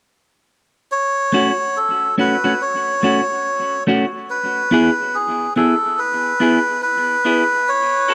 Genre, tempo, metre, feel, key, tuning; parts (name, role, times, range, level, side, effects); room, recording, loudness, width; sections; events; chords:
reggae; 71 BPM; 4/4; swing 62% on 16ths; F# minor; A4 = 440 Hz
melodica; melody; 0.9-8.1 s; G#4 to C#5; -20 LUFS; equal; tape echo
semi-hollow electric guitar; accompaniment; 1.3-8.1 s; A3 to A4; -21 LUFS; equal; high-pass filter, tape echo
light reverb, studio reverb; -18 LUFS; mono
0.9-8.1 A section
filter sweep on clean electric guitar 4.3-8.1
0.9 F#m; 4.3 E